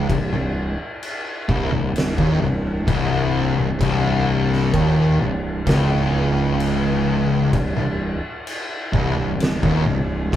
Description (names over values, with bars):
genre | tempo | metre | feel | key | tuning
stoner and doom metal | 64 BPM | 4/4 | straight | C phrygian | A4 = 440 Hz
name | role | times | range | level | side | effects
thick fuzz guitar | riff | 0.0-10.4 s | C2 to Eb2 | -22 LUFS | left 4 dB | distortion
thick fuzz guitar | riff | 0.0-10.4 s | C2 to Eb2 | -21 LUFS | right 1 dB | distortion
growling picked electric bass | bass | 0.0-10.4 s | C1 to Eb1 | -26 LUFS | equal | overdrive
oversized low-tuned drum kit | drums | 0.1-10.4 s | crash cymbal, kick drum, snare drum | -25 LUFS | equal | none
room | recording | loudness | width
moderate studio reverb, RT60 0.6 s | band playing live in one room | -18 LUFS | side -11 dB against mid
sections
0.0-10.4 A section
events
none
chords
0.0 Cm